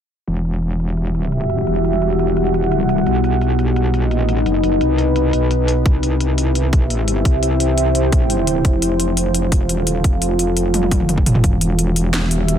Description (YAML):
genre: dark technical drum and bass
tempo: 172 BPM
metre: 4/4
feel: straight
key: E harmonic minor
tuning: A4 = 440 Hz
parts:
  - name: deep dark ambient pad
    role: sustained chords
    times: 1.0-12.6 s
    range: B3 to F5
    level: -22 LUFS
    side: equal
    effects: chorus, built-in reverb, sidechain pumping
  - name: metallic wobble bass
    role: bass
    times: 0.3-12.6 s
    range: E1 to C2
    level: -18 LUFS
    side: equal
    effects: chorus, overdrive, sidechain pumping
  - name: drum and bass drum kit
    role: drums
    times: 0.3-12.6 s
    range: hi-hat, snare drum, toms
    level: -22 LUFS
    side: left 1 dB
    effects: low-pass filter on hats, low-pass filter on toms, low-pass filter on snare
  - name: deep dark ambient pad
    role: texture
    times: 1.3-11.4 s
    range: G3 to A5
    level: -22 LUFS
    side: equal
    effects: chorus, built-in reverb, sidechain pumping
  - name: electronic kick drum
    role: drums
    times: 5.9-11.5 s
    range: none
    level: -15 LUFS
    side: equal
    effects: none
room: light reverb, digital ambience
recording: none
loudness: -15 LUFS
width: side -9 dB against mid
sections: 0.3-11.4 A section; 11.4-12.6 B section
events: drum fill 10.7-11.4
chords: 0.3 Emadd9; 3.1 B; 5.9 C; 8.6 F; 11.4 Emadd9